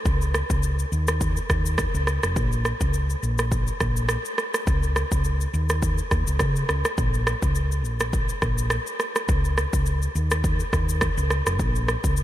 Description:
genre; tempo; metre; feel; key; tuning
afrobeats; 104 BPM; 4/4; swing 55% on 16ths; Bb minor; A4 = 438 Hz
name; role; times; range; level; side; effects
hollow-body short-scale fingered electric bass; bass; 0.1-12.2 s; F1 to Db3; -24 LUFS; equal; none
afro-pop drum kit; drums; 0.1-12.2 s; kick drum, rim click, shaker; -24 LUFS; equal; none
room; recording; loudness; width
light reverb; none; -21 LUFS; side -13 dB against mid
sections
0.0-7.0 A section; 7.0-12.2 B section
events
none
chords
none

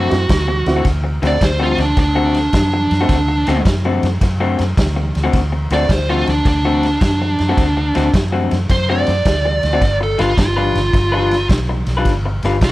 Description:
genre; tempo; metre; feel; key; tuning
electric blues shuffle; 107 BPM; 4/4; swing 67% on 8ths; D mixolydian; A4 = 440 Hz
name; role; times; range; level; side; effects
smooth overdriven lead guitar; melody; 0.0-12.7 s; D4 to D5; -18 LUFS; right 1 dB; none
electric guitar through a small old amp; riff; 0.0-12.7 s; D3 to B4; -20 LUFS; left 4 dB; none
vintage muted fingered electric bass; bass; 0.0-12.7 s; G1 to F#2; -19 LUFS; equal; none
dark upright piano; accompaniment; 0.1-0.8 s; C4 to F#4; -22 LUFS; right 2 dB; none
raw garage drum kit; drums; 0.1-12.7 s; kick drum, ride cymbal, snare drum; -19 LUFS; equal; none
room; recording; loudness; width
studio reverb; none; -13 LUFS; side -17 dB against mid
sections
0.9-12.7 A section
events
lead electric guitar solo 0.9-12.7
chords
0.0 D7; 9.8 G7

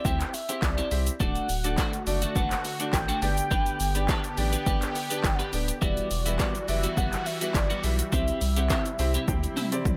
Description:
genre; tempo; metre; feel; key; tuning
dance-pop; 104 BPM; 4/4; straight; unclear; A4 = 440 Hz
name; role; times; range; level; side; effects
mellow horn-like synth lead; melody; 0.0-9.8 s; D5 to A5; -35 LUFS; equal; chorus
clear concert grand piano; accompaniment; 0.0-10.0 s; A3 to G5; -37 LUFS; equal; sidechain pumping
twelve-string electric guitar; riff; 0.0-9.9 s; G3 to B4; -36 LUFS; equal; lush chorus
warm sub bass; bass; 0.1-10.0 s; D1 to D2; -31 LUFS; equal; sidechain pumping
deep house drum kit; drums; 0.1-10.0 s; handclaps, hi-hat, kick drum, shaker, snare drum, toms; -31 LUFS; equal; none
sweeping resonant pad; sustained chords; 1.2-10.0 s; C3 to G4; -39 LUFS; equal; chorus, sidechain pumping
room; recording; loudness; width
little or no reverb; none; -27 LUFS; mono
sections
0.0-10.0 A section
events
drum fill 9.3-10.0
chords
0.0 C; 1.2 D; 3.2 G; 5.8 Emadd9; 8.1 C

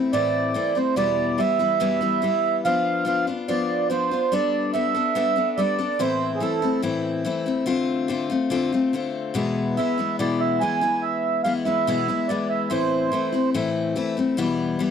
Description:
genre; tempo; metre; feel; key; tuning
folk; 72 BPM; 4/4; straight; A minor; A4 = 440 Hz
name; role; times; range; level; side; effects
picked steel-string acoustic guitar; accompaniment; 0.0-14.9 s; E2 to A4; -23 LUFS; left 4 dB; none
mellow accordion; melody; 0.1-13.5 s; G#4 to G#5; -23 LUFS; right 5 dB; none
room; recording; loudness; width
small room ambience; dry, close 1970s-style studio recording; -20 LUFS; side -7 dB against mid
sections
0.0-14.9 A section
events
accordion solo 0.0-14.9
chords
0.0 Am; 1.0 Em; 2.6 Bdim/F; 4.3 Gadd9; 6.0 Am; 7.7 Dm7; 9.4 E; 12.7 Am; 14.4 Em

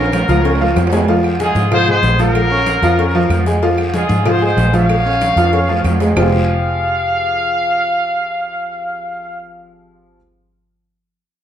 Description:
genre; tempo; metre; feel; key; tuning
latin, salsa; 189 BPM; 4/4; straight; F minor; A4 = 439 Hz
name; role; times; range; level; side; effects
bright trumpet section; melody; 0.0-9.5 s; F4 to F5; -18 LUFS; equal; none
clear grand piano; accompaniment; 0.0-10.2 s; F3 to Db6; -18 LUFS; equal; none
vintage muted fingered electric bass; bass; 0.0-10.2 s; F1 to Ab2; -17 LUFS; equal; none
timbales and agogo bells; percussion; 0.0-6.2 s; none; -23 LUFS; right 3 dB; none
claves; percussion; 0.1-6.2 s; none; -32 LUFS; right 4 dB; none
congas; percussion; 0.1-6.2 s; none; -24 LUFS; left 1 dB; none
cowbell and bongos; percussion; 0.1-6.2 s; none; -25 LUFS; left 5 dB; none
guiro; percussion; 0.1-6.2 s; none; -33 LUFS; left 2 dB; none
room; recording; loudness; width
wet large studio reverb, RT60 1.3 s; dark, warm production, faint mains hum; -12 LUFS; side -10 dB against mid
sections
0.0-6.2 A section; 6.2-8.7 B section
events
drum fill 0.0-1.1, 5.4-6.2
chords
0.0 Bbm; 1.1 Fm; 2.4 Bbm; 6.2 Fmadd9

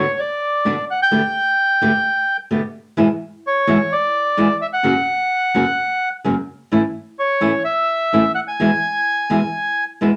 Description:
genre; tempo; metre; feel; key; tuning
tango; 128 BPM; 4/4; rubato; unclear; A4 = 440 Hz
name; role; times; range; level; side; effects
bandoneon; melody; 0.0-9.8 s; C#5 to G#5; -20 LUFS; equal; none
flamenco guitar; accompaniment; 0.0-10.1 s; E2 to G4; -20 LUFS; equal; none
room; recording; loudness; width
wet club reverb, RT60 0.5 s; none; -18 LUFS; mono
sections
0.0-10.2 A section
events
none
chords
0.0 Bm; 1.1 Gadd9/B; 3.0 E; 4.8 F#; 6.7 A; 8.6 E

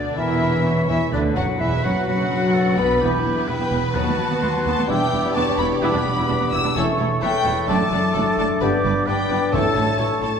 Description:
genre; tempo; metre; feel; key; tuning
classical; 129 BPM; 4/4; straight; B minor; A4 = 439 Hz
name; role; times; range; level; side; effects
warm symphonic violin section; melody; 0.0-10.4 s; D5 to E6; -27 LUFS; left 3 dB; none
rich symphonic violin section; second line; 0.0-10.3 s; D4 to D5; -31 LUFS; left 1 dB; none
silver concert flute; second line; 0.0-10.2 s; D5 to E6; -28 LUFS; left 1 dB; none
warm clarinet; second line; 0.0-10.2 s; D4 to D5; -29 LUFS; left 1 dB; none
mellow bassoon; accompaniment; 0.0-10.2 s; D3 to B3; -27 LUFS; right 2 dB; none
warm symphonic viola section; accompaniment; 0.0-10.3 s; D3 to G4; -28 LUFS; right 2 dB; none
mellow French horn section; sustained chords; 0.0-9.7 s; D3 to D4; -28 LUFS; left 2 dB; none
concert harp; arpeggios; 0.0-10.4 s; F#2 to C#5; -26 LUFS; left 6 dB; none
clear symphonic double bass section; bass; 0.0-10.3 s; E1 to D#2; -27 LUFS; right 3 dB; none
warm symphonic cello section; bass; 0.0-10.3 s; D2 to B2; -28 LUFS; right 4 dB; none
warm oboe; second line; 0.2-10.4 s; G4 to F#5; -30 LUFS; right 1 dB; none
timpani; percussion; 9.5-10.2 s; A2; -27 LUFS; left 1 dB; none
room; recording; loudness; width
wet recital hall reverb, RT60 1.6 s; minimal, uncompressed stereo recording; -18 LUFS; side -7 dB against mid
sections
0.0-10.4 A section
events
none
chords
0.2 F#7/E; 1.1 Bm; 3.0 Em; 4.0 B7/D#; 4.9 Em7; 6.8 A7/E; 7.7 D/F#; 8.6 G; 9.5 A

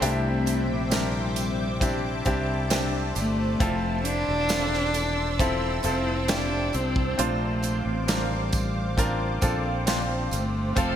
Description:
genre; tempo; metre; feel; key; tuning
pop ballad; 67 BPM; 4/4; straight; unclear; A4 = 440 Hz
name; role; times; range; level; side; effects
warm cello; melody; 0.0-11.0 s; G3 to D4; -29 LUFS; equal; ping-pong delay
bright grand piano; accompaniment; 0.0-11.0 s; G2 to C5; -30 LUFS; equal; none
lush unison pad; sustained chords; 0.0-11.0 s; C5 to E6; -34 LUFS; right 1 dB; chorus, phaser
picked steel-string acoustic guitar; arpeggios; 0.0-11.0 s; C3 to C5; -35 LUFS; left 4 dB; ensemble chorus
fretless electric bass; bass; 0.0-11.0 s; E1 to C2; -29 LUFS; equal; none
modern studio drum kit; drums; 0.0-11.0 s; hi-hat, kick drum, snare drum; -28 LUFS; right 1 dB; gated reverb
tambourine; percussion; 0.0-11.0 s; none; -41 LUFS; right 5 dB; none
clear studio violin section; second line; 10.8-11.0 s; C4 to F5; -31 LUFS; left 1 dB; none
room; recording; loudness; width
light reverb; bright 1980s-style digital production; -23 LUFS; side -10 dB against mid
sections
0.0-11.0 A section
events
none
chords
0.0 Cadd9; 3.6 Fmaj7; 7.2 Bbadd9

